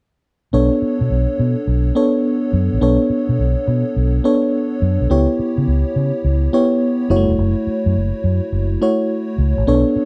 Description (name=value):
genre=R&B, new jack swing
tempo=105 BPM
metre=4/4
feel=swing 66% on 16ths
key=B minor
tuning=A4 = 440 Hz
part: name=FM electric piano with soft pad layer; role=accompaniment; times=0.5-10.1 s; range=G3 to C#5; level=-20 LUFS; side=equal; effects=chorus, tremolo
part: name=vintage muted fingered electric bass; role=bass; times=0.5-10.0 s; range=E1 to C#3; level=-19 LUFS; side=equal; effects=none
room=little or no reverb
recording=dry, close 1970s-style studio recording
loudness=-17 LUFS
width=mono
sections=0.5-9.7 A section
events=none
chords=0.5 Bm9; 5.1 C#m7b5; 7.1 F#m7